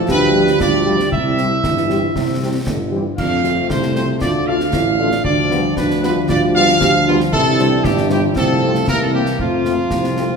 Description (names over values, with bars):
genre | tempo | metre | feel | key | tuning
military-style march for wind band | 116 BPM | 2/4 | straight | F major | A4 = 439 Hz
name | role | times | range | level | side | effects
warm euphonium | second line | 0.0-10.4 s | A3 to G4 | -22 LUFS | right 2 dB | none
warm trombone section | sustained chords | 0.0-10.4 s | C3 to Bb3 | -24 LUFS | right 2 dB | none
bright trumpet section | melody | 0.1-10.4 s | F4 to F5 | -19 LUFS | right 1 dB | none
mellow tuba | bass | 0.1-10.3 s | G1 to F2 | -19 LUFS | equal | none
concert snare drum, concert bass drum and clash cymbals | drums | 0.1-10.3 s | none | -24 LUFS | left 1 dB | none
warm French horn section | accompaniment | 0.3-10.3 s | F3 to G4 | -25 LUFS | left 3 dB | none
room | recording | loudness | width
wet recital hall reverb, RT60 1.6 s | recorded in a church or concert hall | -14 LUFS | side -5 dB against mid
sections
0.0-10.4 A section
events
none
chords
0.1 G7/D; 1.1 C; 3.2 F; 4.2 Dm; 5.3 G7/D; 7.3 C; 8.4 F/C; 8.9 C7; 9.4 F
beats
| 0.09 0.60 | 1.12 1.64 | 2.15 2.67 | 3.19 3.70 | 4.22 4.74 | 5.26 5.78 | 6.29 6.81 | 7.33 7.85 | 8.37 8.88 | 9.40 9.92